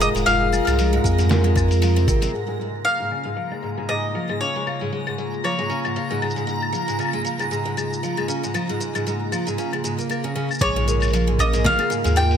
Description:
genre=folktronica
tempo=116 BPM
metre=4/4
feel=swing 56% on 16ths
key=Bb minor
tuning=A4 = 440 Hz
part: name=bowl-back mandolin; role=melody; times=0.0-6.2, 10.6-12.4 s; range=Db5 to G5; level=-24 LUFS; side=left 1 dB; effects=digital delay
part: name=vibraphone with medium hard mallets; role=second line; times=0.0-2.4, 10.9-12.4 s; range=Bb3 to F5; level=-28 LUFS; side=right 4 dB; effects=tape echo
part: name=warbly tape-like pad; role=sustained chords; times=0.0-12.4 s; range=C3 to Ab4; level=-28 LUFS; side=equal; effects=chorus, built-in reverb
part: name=picked twelve-string acoustic guitar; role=arpeggios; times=0.0-12.4 s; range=Ab2 to Bb3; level=-27 LUFS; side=equal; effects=low-pass filter, digital delay
part: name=warm sub bass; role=bass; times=0.0-2.3, 10.6-12.4 s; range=Eb1 to F2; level=-20 LUFS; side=equal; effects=none
part: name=lo-fi sampler-style drum kit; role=drums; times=0.0-12.4 s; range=claves, hi-hat, shaker, snare drum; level=-28 LUFS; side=left 3 dB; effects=low-pass filter on hats, low-pass filter on perc, low-pass filter on snare
part: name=backwards swelling texture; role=texture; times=0.0-10.6 s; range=Bb5 to Bb6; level=-32 LUFS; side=right 1 dB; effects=built-in reverb
part: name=electronic kick drum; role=drums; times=1.0-2.2, 10.6-11.8 s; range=none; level=-23 LUFS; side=equal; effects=none
room=light reverb, digital ambience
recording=none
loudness=-19 LUFS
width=side -8 dB against mid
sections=0.0-2.3 A section; 2.3-10.6 B section; 10.6-12.4 A section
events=filter sweep on drum 2.3-10.6; filter sweep on twelve-string acoustic guitar 2.3-10.6; filter sweep on ambient pad 2.3-10.6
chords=0.0 Fm; 2.3 Bbm7

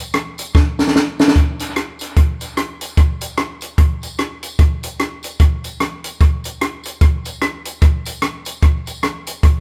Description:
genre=ska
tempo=148 BPM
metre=4/4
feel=swing 60% on 8ths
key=none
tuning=none
part: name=compact cocktail drum kit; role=drums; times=0.1-9.5 s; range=hi-hat, kick drum, rim click, snare drum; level=-17 LUFS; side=equal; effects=dub echo
part: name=tambourine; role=percussion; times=0.4-9.3 s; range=none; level=-38 LUFS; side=equal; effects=dub echo
room=light reverb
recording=band playing live in one room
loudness=-18 LUFS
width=mono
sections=0.0-1.4 A section; 1.4-9.6 A section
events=drum fill 0.5-1.4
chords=none

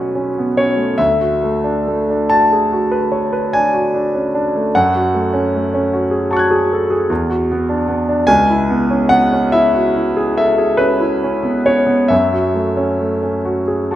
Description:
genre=classical, impressionist solo piano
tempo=44-52 BPM (dotted quarters)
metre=9/8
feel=rubato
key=F# minor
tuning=A4 = 440 Hz
part: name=clear concert grand piano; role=solo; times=0.0-14.0 s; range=B1 to G#6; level=-13 LUFS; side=equal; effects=none
room=wet recital hall reverb, RT60 1.3 s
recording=none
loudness=-13 LUFS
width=side -12 dB against mid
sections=0.0-14.0 A section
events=none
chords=0.0 Bm9; 1.0 D69; 4.7 F#madd9; 7.1 Esus2; 8.3 C#m7; 12.1 F#m9

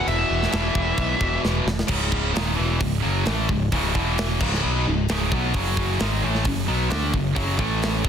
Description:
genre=heavy metal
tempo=132 BPM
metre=4/4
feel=straight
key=C# minor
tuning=A4 = 440 Hz
part: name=high-gain lead guitar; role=melody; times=0.0-1.4 s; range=E5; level=-26 LUFS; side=equal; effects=distortion, ping-pong delay
part: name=heavy high-gain guitar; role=riff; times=0.0-8.1 s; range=C#2 to D4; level=-24 LUFS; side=equal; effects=distortion
part: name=modern bright picked electric bass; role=bass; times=0.1-8.1 s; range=C#1 to D2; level=-25 LUFS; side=equal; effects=none
part: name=tight metal drum kit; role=drums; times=0.1-8.1 s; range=crash cymbal, hi-hat, kick drum, snare drum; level=-26 LUFS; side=equal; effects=soft clipping on kick
room=studio ambience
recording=dense, heavily limited modern master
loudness=-20 LUFS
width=side -8 dB against mid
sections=0.0-1.9 A section; 1.9-8.1 B section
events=drum fill 1.4-1.9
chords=0.0 E5; 1.9 C#m; 3.9 E5; 4.4 C#5; 5.5 F#5; 7.6 A5

